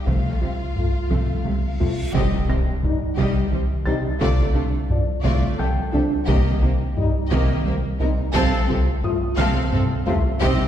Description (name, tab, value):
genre	cinematic, hybrid orchestral and electronic film score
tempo	58 BPM (dotted quarters)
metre	6/8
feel	straight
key	unclear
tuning	A4 = 439 Hz
part	warm symphonic violin section	melody	0.0-10.7 s	F4 to F5	-33 LUFS	left 4 dB	none
part	warm symphonic violin section	second line	0.0-10.7 s	A3 to A4	-31 LUFS	left 2 dB	none
part	punchy sub bass	bass	0.0-10.7 s	C2	-27 LUFS	equal	none
part	felt-muted upright piano	texture	0.0-10.7 s	G5 to Bb6	-36 LUFS	left 2 dB	tape echo
part	rich symphonic viola section	accompaniment	0.1-10.7 s	C3 to C4	-29 LUFS	right 1 dB	none
part	woody wave-folded pluck	arpeggios	0.1-10.6 s	C3 to F4	-31 LUFS	right 3 dB	none
part	rubbery square bass	riff	0.1-10.6 s	C2	-26 LUFS	right 1 dB	none
part	warm symphonic cello section	bass	0.1-10.5 s	C3	-29 LUFS	right 2 dB	none
part	warm symphonic double bass section	bass	0.1-10.5 s	C2	-28 LUFS	right 1 dB	none
part	taiko ensemble	drums	0.1-10.7 s	none	-26 LUFS	equal	none
part	reverse cymbal and impact	sound effects	1.8-4.2 s	none	-31 LUFS	equal	none
part	mellow French horn section	sustained chords	0.8-10.7 s	F3 to F4	-29 LUFS	left 2 dB	none
room	wet scoring stage reverb, RT60 1.6 s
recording	heard from further back in the room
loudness	-19 LUFS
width	side -10 dB against mid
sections	0.0-2.1 A section; 2.1-10.7 A section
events	drum fill 1.1-2.1, 9.4-10.4; reverse cymbal 1.8-2.1; impact 2.1-4.2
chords	0.1 F/C; 2.1 Cm; 4.2 Dm/C; 6.3 Eb/C; 8.3 F/C